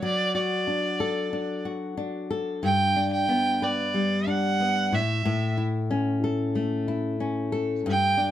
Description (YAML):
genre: pop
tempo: 92 BPM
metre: 4/4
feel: straight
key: unclear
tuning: A4 = 442 Hz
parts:
  - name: warm violin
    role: melody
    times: 0.0-8.3 s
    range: D5 to G5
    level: -25 LUFS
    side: right 2 dB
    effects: none
  - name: flamenco guitar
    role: accompaniment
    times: 0.0-8.3 s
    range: G2 to B4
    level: -26 LUFS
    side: left 2 dB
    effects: none
room: moderate studio reverb, RT60 0.5 s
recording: none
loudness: -23 LUFS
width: side -11 dB against mid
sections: 0.0-8.3 A section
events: none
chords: 0.0 D/F#; 2.6 G; 4.9 A